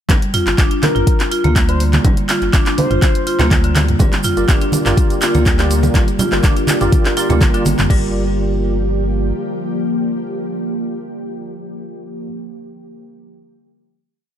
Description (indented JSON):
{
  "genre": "afro house",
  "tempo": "123 BPM",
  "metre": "4/4",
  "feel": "straight",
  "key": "G minor pentatonic",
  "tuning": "A4 = 440 Hz",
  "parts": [
    { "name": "marimba with hard mallets", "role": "arpeggios", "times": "0.1-8.1 s", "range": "D3 to F4", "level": "-20 LUFS", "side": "equal", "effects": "sidechain pumping, ping-pong delay" },
    { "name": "warm sub bass", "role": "bass", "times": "0.1-9.3 s", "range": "G1 to D2", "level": "-19 LUFS", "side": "equal", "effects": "sidechain pumping" },
    { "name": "deep house drum kit", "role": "drums", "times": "0.1-8.0 s", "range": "crash cymbal, handclaps, hi-hat, toms", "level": "-20 LUFS", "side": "equal", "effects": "none" },
    { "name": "electronic kick drum", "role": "drums", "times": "0.1-8.0 s", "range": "none", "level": "-15 LUFS", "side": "equal", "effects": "none" },
    { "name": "congas", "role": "percussion", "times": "0.1-7.8 s", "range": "none", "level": "-20 LUFS", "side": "right 3 dB", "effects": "none" },
    { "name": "expressive synth lead", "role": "melody", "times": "0.8-3.5 s", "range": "Bb4 to C5", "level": "-24 LUFS", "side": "left 1 dB", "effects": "wide subtle chorus, ping-pong delay" },
    { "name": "ethereal airy pad", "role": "sustained chords", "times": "4.9-12.3 s", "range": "D3 to G4", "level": "-24 LUFS", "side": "equal", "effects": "ensemble chorus, built-in reverb, sidechain pumping" },
    { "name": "bell-like tine electric piano", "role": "stabs", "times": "4.0-12.3 s", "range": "F4 to D5", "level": "-24 LUFS", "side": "right 2 dB", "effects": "ensemble chorus, sidechain pumping, ping-pong delay" },
    { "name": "tube shaker", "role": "percussion", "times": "4.0-7.9 s", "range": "none", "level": "-30 LUFS", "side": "right 6 dB", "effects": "none" }
  ],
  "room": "digital ambience",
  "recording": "none",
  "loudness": "-13 LUFS",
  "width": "side -10 dB against mid",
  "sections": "0.1-7.9 drop; 7.9-11.8 final chord",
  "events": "drop 0.1-7.9",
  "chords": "0.1 Gm7",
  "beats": "| 0.10 0.58 1.07 1.56 | 2.05 2.54 3.02 3.51 | 4.00 4.49 4.97 5.46 | 5.95 6.44 6.93 7.41 | 7.90 8.39 8.88 9.37 | 9.85 10.34 10.83 11.32"
}